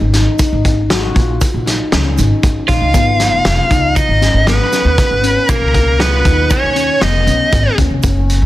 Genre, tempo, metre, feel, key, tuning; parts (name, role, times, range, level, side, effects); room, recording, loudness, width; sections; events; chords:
progressive instrumental, band music in an uneven meter; 118 BPM; 5/4; straight; G# dorian; A4 = 438 Hz
handpan; arpeggios; 0.0-8.4 s; B2 to F#4; -20 LUFS; left 4 dB
upright bass; bass; 0.0-8.5 s; E#1 to D#2; -15 LUFS; equal
loose indie drum kit; drums; 0.1-8.4 s; hi-hat, kick drum, snare drum; -16 LUFS; equal
tube shaker; percussion; 0.4-8.3 s; -31 LUFS; right 8 dB
high-gain lead guitar; melody; 2.7-7.7 s; A#4 to E#5; -15 LUFS; equal; distortion
semi-hollow electric guitar; second line; 2.7-7.7 s; A#3 to E#4; -22 LUFS; right 6 dB
light reverb, small room ambience; dense, heavily limited modern master; -10 LUFS; side -15 dB against mid
0.0-8.5 A section
0.0 D#sus4/G#; 2.9 G#m